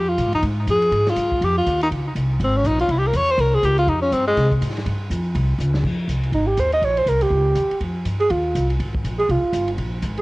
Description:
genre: jazz, small-group swing and bop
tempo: 244 BPM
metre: 4/4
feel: swing 60% on 8ths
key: F minor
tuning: A4 = 441 Hz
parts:
  - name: warm tenor saxophone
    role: melody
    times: 0.0-4.5 s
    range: Ab3 to Db5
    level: -19 LUFS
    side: left 1 dB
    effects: cassette tape, analog delay
  - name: upright bass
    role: bass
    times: 0.0-10.2 s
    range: G1 to C3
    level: -21 LUFS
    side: equal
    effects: tube saturation
  - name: open jazz drum kit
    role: drums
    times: 0.2-10.2 s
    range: crash cymbal, hi-hat, kick drum, ride cymbal, snare drum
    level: -31 LUFS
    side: equal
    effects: cassette tape
  - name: breathy alto saxophone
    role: second line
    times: 6.3-10.2 s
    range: Eb4 to Eb5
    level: -19 LUFS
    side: right 2 dB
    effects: cassette tape, plate reverb
room: light reverb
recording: home recording on cassette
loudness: -17 LUFS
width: side -22 dB against mid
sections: 0.0-5.8 A section; 5.8-10.2 A section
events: tenor saxophone solo 0.0-5.8; drum fill 5.6; alto saxophone solo 5.8-10.2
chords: 0.0 Fm9; 1.9 Db5; 2.9 C; 3.9 Fmadd9; 4.9 Fsus2; 5.4 N.C.; 5.8 Fm7; 6.8 Bbmadd9; 7.8 Fm9

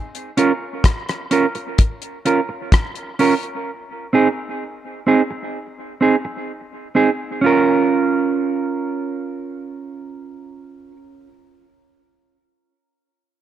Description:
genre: dub reggae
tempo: 64 BPM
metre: 4/4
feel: straight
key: Bb minor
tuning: A4 = 440 Hz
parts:
  - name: damped 70s drum kit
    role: drums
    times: 0.1-3.6 s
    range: hi-hat, kick drum, rim click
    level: -17 LUFS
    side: left 1 dB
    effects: none
  - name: mellow electric guitar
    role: accompaniment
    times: 0.4-11.0 s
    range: C4 to Bb4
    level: -18 LUFS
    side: right 4 dB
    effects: dub echo
room: moderate spring reverb, RT60 2.6 s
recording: dark, warm production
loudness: -16 LUFS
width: side -11 dB against mid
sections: 0.0-7.4 A section; 7.4-11.2 B section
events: none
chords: 0.0 Bbm; 3.7 Ab; 7.4 Bbm

